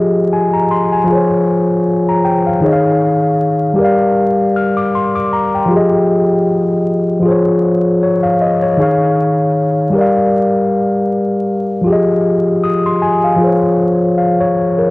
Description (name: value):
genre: hip hop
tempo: 78 BPM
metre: 4/4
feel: swing 55% on 16ths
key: F minor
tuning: A4 = 442 Hz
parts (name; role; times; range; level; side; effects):
- mellow tine electric piano; solo; 0.0-14.9 s; Eb3 to F6; -11 LUFS; left 1 dB; slow stereo tremolo, cassette tape, tape echo
room: moderate spring reverb, RT60 1.6 s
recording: home recording on cassette, vinyl crackle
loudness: -11 LUFS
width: side -22 dB against mid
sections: 0.0-14.9 A section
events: none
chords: 0.0 Fm7; 1.1 Bbm13/F; 2.6 Eb7sus4; 3.8 Gm7; 5.7 Fm7; 7.3 Dbmaj9/F; 8.8 Eb7sus4; 9.9 Gm7; 11.9 Fm7; 13.4 Bbm9/F (rootless)